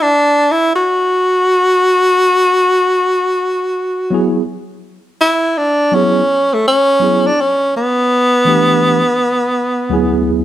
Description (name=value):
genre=hip hop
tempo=83 BPM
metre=4/4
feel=swing 63% on 16ths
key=F# minor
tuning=A4 = 440 Hz
part: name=clear tenor saxophone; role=melody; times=0.0-10.4 s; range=A3 to F#4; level=-11 LUFS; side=equal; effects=none
part: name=tine electric piano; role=accompaniment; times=4.1-10.4 s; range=D2 to G#4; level=-16 LUFS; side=right 1 dB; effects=fast stereo tremolo
room=moderate echo chamber reverb, RT60 1.6 s, studio reverb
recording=none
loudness=-11 LUFS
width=side -12 dB against mid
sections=0.0-5.2 A section; 5.2-10.4 B section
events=none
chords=0.0 F#sus2; 8.1 Asus2; 9.6 Dadd9